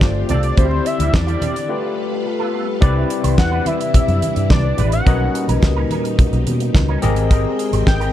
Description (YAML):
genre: early-eighties boogie funk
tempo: 107 BPM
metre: 4/4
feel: straight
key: unclear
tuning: A4 = 440 Hz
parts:
  - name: fat analog lead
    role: melody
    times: 0.0-8.1 s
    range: C5 to G5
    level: -23 LUFS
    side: left 1 dB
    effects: chorus, slapback echo
  - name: overdriven tine electric piano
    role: accompaniment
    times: 0.0-8.1 s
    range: A3 to D#5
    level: -22 LUFS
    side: left 5 dB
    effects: analog chorus
  - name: string machine, violins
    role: sustained chords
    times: 0.0-8.1 s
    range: A#2 to G5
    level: -26 LUFS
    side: equal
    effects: ensemble chorus
  - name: electric guitar with an envelope filter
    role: riff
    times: 0.0-8.1 s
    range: G3 to C5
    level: -29 LUFS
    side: right 7 dB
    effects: ensemble chorus
  - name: vintage muted fingered electric bass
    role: bass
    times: 0.0-8.1 s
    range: G1 to B2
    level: -19 LUFS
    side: equal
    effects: none
  - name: damped 70s drum kit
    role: drums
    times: 0.0-8.1 s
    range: handclaps, hi-hat, kick drum, snare drum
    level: -16 LUFS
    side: equal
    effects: none
  - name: congas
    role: percussion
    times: 0.0-8.1 s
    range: none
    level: -27 LUFS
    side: right 2 dB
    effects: none
room: light reverb, small room ambience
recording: dark, warm production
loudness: -15 LUFS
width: side -12 dB against mid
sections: 0.0-2.8 A section; 2.8-8.1 B section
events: break 1.7-2.8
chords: 0.0 G9sus4; 0.6 D9sus4; 1.7 G9; 2.8 Cmaj9; 5.1 Bmaj9; 7.0 G#maj9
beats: 0.02 | 0.58 1.14 1.70 2.26 | 2.82 3.38 3.94 4.50 | 5.06 5.62 6.18 6.75 | 7.31 7.87